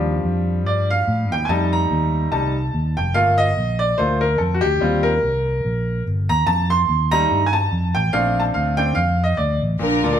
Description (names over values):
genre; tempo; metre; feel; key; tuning
uptempo gospel; 144 BPM; 4/4; swing 57% on 8ths; Bb major; A4 = 441 Hz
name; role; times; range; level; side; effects
bright baby grand piano; accompaniment; 0.0-10.2 s; Bb2 to C6; -19 LUFS; equal; none
fingered electric bass; bass; 0.0-10.2 s; F1 to A2; -21 LUFS; equal; none
warm studio string section; melody; 9.8-10.2 s; D4 to Bb4; -18 LUFS; equal; none
room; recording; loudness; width
wet stone room reverb, RT60 1.4 s; band playing live in one room; -17 LUFS; side -9 dB against mid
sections
0.0-9.8 A section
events
grand piano solo 0.0-9.8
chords
0.0 Ebmaj7; 1.5 F7; 3.2 Gm7; 4.8 Eb6; 6.5 F7; 8.1 Bbmaj7